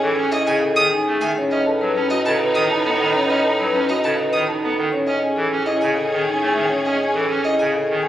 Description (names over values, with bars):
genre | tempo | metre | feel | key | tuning
classical, minimalist pattern music | 101 BPM | 3/4 | straight | A lydian | A4 = 441 Hz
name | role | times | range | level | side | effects
marimba with soft mallets | melody | 0.0-8.1 s | G#4 to A5 | -22 LUFS | left 2 dB | none
pipe organ, clarinet reed | accompaniment | 0.0-8.0 s | C#3 to C#4 | -25 LUFS | right 2 dB | none
clear studio string section | sustained chords | 0.0-8.1 s | C#4 to B4 | -23 LUFS | equal | none
marimba with soft mallets | arpeggios | 0.0-8.1 s | C#4 to B4 | -24 LUFS | right 3 dB | none
mellow bass clarinet | bass | 0.0-8.1 s | A2 | -30 LUFS | equal | none
rich violin | arpeggios | 0.3-7.7 s | D#5 to D#6 | -24 LUFS | equal | none
room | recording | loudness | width
wet recital hall reverb, RT60 1.4 s | recorded on a phone in the room, club reverb, compression | -17 LUFS | side -12 dB against mid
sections
0.0-8.1 A section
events
none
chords
0.0 Amaj7; 1.4 B7/A; 4.9 Amaj7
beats
0.17 0.76 | 1.35 1.95 2.54 | 3.14 3.73 4.33 | 4.92 5.51 6.11 | 6.70 7.30 7.89